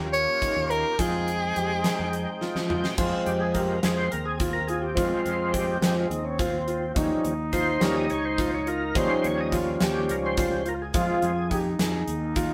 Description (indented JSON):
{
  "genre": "progressive instrumental, band music in an uneven meter",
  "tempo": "211 BPM (eighths)",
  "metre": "7/8",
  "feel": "straight",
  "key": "F minor",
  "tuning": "A4 = 440 Hz",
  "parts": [
    { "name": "overdriven tonewheel organ", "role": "accompaniment", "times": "0.0-11.6 s", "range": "F3 to G5", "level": "-30 LUFS", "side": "equal", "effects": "chorus vibrato, slow rotary speaker" },
    { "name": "clear concert grand piano", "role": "arpeggios", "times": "0.0-12.5 s", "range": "Eb4 to Ab4", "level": "-34 LUFS", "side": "equal", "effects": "none" },
    { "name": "fretless electric bass", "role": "bass", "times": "0.0-12.5 s", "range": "Db2 to F3", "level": "-34 LUFS", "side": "equal", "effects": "none" },
    { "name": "clear soprano saxophone", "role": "melody", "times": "0.1-2.7 s", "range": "Ab4 to Db5", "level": "-28 LUFS", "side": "equal", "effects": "none" },
    { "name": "gated 80s drum kit", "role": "drums", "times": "0.1-12.5 s", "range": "crash cymbal, hi-hat, kick drum, snare drum, toms", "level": "-31 LUFS", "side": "equal", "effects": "none" },
    { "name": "mellow flugelhorn", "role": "second line", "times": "3.0-12.5 s", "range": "C4 to F4", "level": "-34 LUFS", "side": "equal", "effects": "none" }
  ],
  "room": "moderate stone room reverb, RT60 1.0 s",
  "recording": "band playing live in one room",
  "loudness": "-26 LUFS",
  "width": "mono",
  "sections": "0.0-3.0 A section; 3.0-12.5 B section",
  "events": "drum fill 2.4-3.0; tonewheel organ solo 3.0-12.5",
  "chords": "0.0 Eb7; 1.0 Fm7; 3.0 Fm; 7.0 Eb7; 10.9 Fm",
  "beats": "0.14 0.42 0.70 | 0.99 1.27 1.56 1.84 2.13 2.41 2.70 | 2.98 3.27 3.55 3.83 4.12 4.40 4.69 | 4.97 5.26 5.54 5.82 6.11 6.39 6.68 | 6.96 7.25 7.53 7.82 8.10 8.38 8.67 | 8.95 9.24 9.52 9.81 10.09 10.38 10.66 | 10.94 11.23 11.51 11.80 12.08 12.37"
}